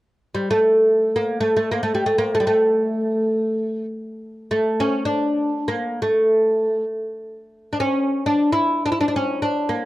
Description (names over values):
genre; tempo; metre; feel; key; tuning
turkish; free time; none; none; A makam hicaz; A4 = 440 Hz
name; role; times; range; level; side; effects
oud; melody; 0.3-9.8 s; G3 to E4; -18 LUFS; equal; none
room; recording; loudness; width
light reverb; close, detailed microphones; -18 LUFS; side -16 dB against mid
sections
0.0-9.9 A section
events
none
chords
none